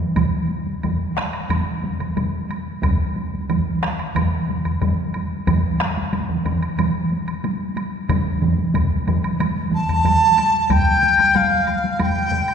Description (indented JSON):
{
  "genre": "japanese traditional, taiko drum ensemble",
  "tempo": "91 BPM",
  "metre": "4/4",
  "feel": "straight",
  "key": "unclear",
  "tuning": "A4 = 440 Hz",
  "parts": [
    { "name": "taiko ensemble", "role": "percussion", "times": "0.0-12.5 s", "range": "none", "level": "-26 LUFS", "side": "equal", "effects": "none" },
    { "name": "taiko ensemble", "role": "percussion", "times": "0.2-12.5 s", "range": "none", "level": "-24 LUFS", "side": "left 2 dB", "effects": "none" },
    { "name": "taiko ensemble", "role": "percussion", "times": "0.2-10.2 s", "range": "none", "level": "-24 LUFS", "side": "right 3 dB", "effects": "none" },
    { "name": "taiko ensemble", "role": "percussion", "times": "0.2-10.9 s", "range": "none", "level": "-26 LUFS", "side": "right 1 dB", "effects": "none" },
    { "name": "woodblock", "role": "percussion", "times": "0.2-12.5 s", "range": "none", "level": "-32 LUFS", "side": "right 2 dB", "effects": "none" },
    { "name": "breathy mellow dizi", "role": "melody", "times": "9.7-12.5 s", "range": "F5 to A5", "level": "-16 LUFS", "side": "equal", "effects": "none" }
  ],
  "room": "wet concert hall reverb, RT60 2.2 s",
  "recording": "recorded in a church or concert hall, lossy compression artefacts",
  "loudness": "-18 LUFS",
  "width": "side -7 dB against mid",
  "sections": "0.2-10.7 A section; 10.7-12.5 B section",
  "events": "speeding up 0.0-12.5",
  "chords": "none"
}